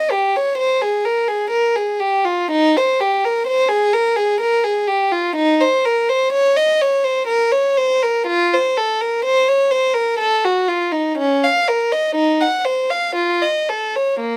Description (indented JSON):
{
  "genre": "classical, baroque-style suite movement for unaccompanied violin",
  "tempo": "62 BPM",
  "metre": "3/4",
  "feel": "rubato",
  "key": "Bb minor from 5.4 s",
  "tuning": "A4 = 440 Hz",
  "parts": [
    { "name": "warm violin", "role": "solo", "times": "0.0-14.4 s", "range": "Bb3 to Gb5", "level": "-17 LUFS", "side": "equal", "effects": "none" }
  ],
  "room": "light reverb",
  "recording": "close, detailed microphones",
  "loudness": "-17 LUFS",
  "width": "mono",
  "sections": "0.0-14.4 A section",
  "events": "none",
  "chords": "none"
}